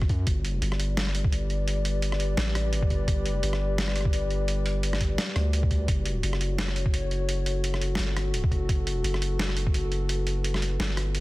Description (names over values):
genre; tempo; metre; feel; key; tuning
half-time drum and bass; 171 BPM; 4/4; swing 56% on 16ths, half-time; F# phrygian; A4 = 439 Hz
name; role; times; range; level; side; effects
dark analog pad; sustained chords; 0.0-11.2 s; G3 to D5; -33 LUFS; left 2 dB; chorus, sidechain pumping
long sustained 808-style bass; bass; 0.0-11.2 s; F#1 to F#2; -27 LUFS; equal; none
boom bap sampler-style drum kit; drums; 0.0-11.2 s; hi-hat, rim click, snare drum; -32 LUFS; equal; studio reverb
electronic kick drum; drums; 0.0-9.7 s; none; -26 LUFS; equal; studio reverb
room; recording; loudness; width
digital ambience; dense, heavily limited modern master; -24 LUFS; side -20 dB against mid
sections
0.0-11.2 A section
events
none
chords
0.3 G; 5.9 F#m